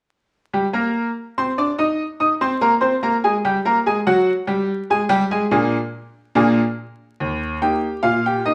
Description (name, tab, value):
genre	ragtime piano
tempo	72 BPM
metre	2/4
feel	straight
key	Eb major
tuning	A4 = 439 Hz
part	bright grand piano	solo	0.5-8.5 s	Eb2 to Eb6	-19 LUFS	equal	none
room	wet large studio reverb, RT60 0.8 s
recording	band playing live in one room, vinyl crackle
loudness	-20 LUFS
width	mono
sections	0.5-7.2 A section; 7.2-8.5 B section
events	none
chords	0.5 Eb; 3.9 Bb7; 7.2 Eb